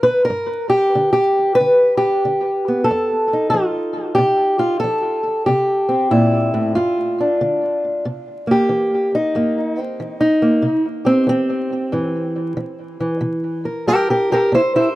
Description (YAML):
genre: acoustic country blues, solo or duo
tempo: 93 BPM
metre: 4/4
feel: swing 65% on 8ths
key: C mixolydian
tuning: A4 = 440 Hz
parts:
  - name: fingerpicked old ladder-braced acoustic guitar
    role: solo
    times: 0.0-15.0 s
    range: F2 to C5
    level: -15 LUFS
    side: equal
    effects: tape echo
room: light reverb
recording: dry, close 1970s-style studio recording, vinyl crackle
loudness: -15 LUFS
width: side -17 dB against mid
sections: 0.0-8.1 A section; 8.1-15.0 B section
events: steel-string acoustic guitar solo 8.1-15.0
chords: 0.0 G; 2.9 F7; 5.5 C7; 6.8 G5; 8.1 C7